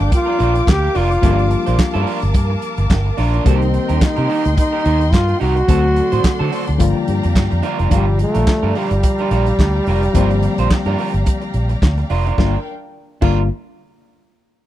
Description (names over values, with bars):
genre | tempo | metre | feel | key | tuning
disco | 108 BPM | 4/4 | swing 56% on 16ths | G minor | A4 = 438 Hz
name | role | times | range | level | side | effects
breathy trombone | melody | 0.0-11.8 s | G3 to G4 | -20 LUFS | equal | none
barky reed electric piano | accompaniment | 0.0-13.5 s | Bb2 to G4 | -24 LUFS | left 7 dB | overdrive
electric guitar through a small old amp | accompaniment | 0.0-13.4 s | C4 to C5 | -25 LUFS | right 9 dB | none
dark studio string section | sustained chords | 0.0-12.6 s | D4 to D6 | -27 LUFS | left 1 dB | none
fingered electric bass with an envelope filter | bass | 0.0-13.5 s | F1 to D3 | -17 LUFS | equal | none
warm soul drum kit | drums | 0.0-13.4 s | crash cymbal, handclaps, hi-hat, kick drum, snare drum | -15 LUFS | equal | none
room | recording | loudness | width
studio reverb | none | -14 LUFS | side -13 dB against mid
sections
0.0-7.9 A section; 7.9-12.4 B section; 12.4-14.6 C section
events
none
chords
0.0 Gm7; 3.5 Cm7; 5.7 D7; 6.8 Gm7